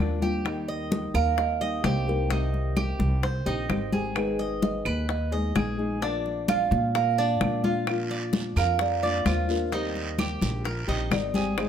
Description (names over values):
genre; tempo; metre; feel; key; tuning
latin, Cuban son and guajira; 129 BPM; 4/4; straight; Eb major; A4 = 440 Hz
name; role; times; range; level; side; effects
kalimba; melody; 0.0-11.7 s; Bb4 to F5; -30 LUFS; right 5 dB; plate reverb
nylon-string guitar; accompaniment; 0.0-11.7 s; C3 to Ab4; -32 LUFS; left 2 dB; none
Cuban tres; arpeggios; 0.0-11.7 s; D4 to Eb5; -33 LUFS; equal; none
upright bass; bass; 0.0-11.7 s; Ab1 to Bb2; -29 LUFS; equal; none
bongos; percussion; 0.2-11.7 s; none; -33 LUFS; left 7 dB; none
congas; percussion; 0.2-11.7 s; none; -30 LUFS; left 2 dB; none
claves; percussion; 0.5-11.7 s; none; -37 LUFS; right 7 dB; none
guiro; percussion; 7.9-11.7 s; none; -38 LUFS; right 4 dB; none
room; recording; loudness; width
light reverb; close, detailed microphones; -24 LUFS; side -8 dB against mid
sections
0.0-11.7 A section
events
none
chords
0.5 Eb; 2.3 Cm; 4.2 Abm; 6.0 Bb; 9.7 Eb6